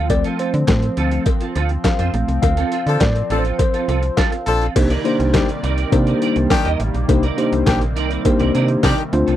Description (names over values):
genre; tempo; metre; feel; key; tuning
early-eighties boogie funk; 103 BPM; 4/4; straight; C dorian; A4 = 440 Hz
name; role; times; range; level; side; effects
mellow tine electric piano; accompaniment; 0.0-9.4 s; F3 to F5; -20 LUFS; left 1 dB; slow stereo tremolo
chorused pulse-width pad; sustained chords; 0.0-9.4 s; C3 to D5; -27 LUFS; equal; none
clean electric guitar; riff; 0.0-9.4 s; C4 to Eb5; -26 LUFS; right 9 dB; ensemble chorus
slap-like FM bass; bass; 0.0-9.4 s; A1 to D3; -20 LUFS; equal; none
boom bap sampler-style drum kit; drums; 0.1-9.4 s; crash cymbal, handclaps, hi-hat, kick drum, snare drum; -19 LUFS; equal; overdrive
cowbell; percussion; 0.1-9.0 s; none; -26 LUFS; left 13 dB; none
clear horn section; second line; 2.9-9.0 s; Eb3 to A4; -20 LUFS; left 4 dB; none
room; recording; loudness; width
little or no reverb; dry, close 1970s-style studio recording; -15 LUFS; side -12 dB against mid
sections
0.0-4.8 A section; 4.8-9.4 B section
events
tine electric piano solo 0.0-4.8; band accent 2.4-4.8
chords
0.0 Dm7; 4.8 Cm9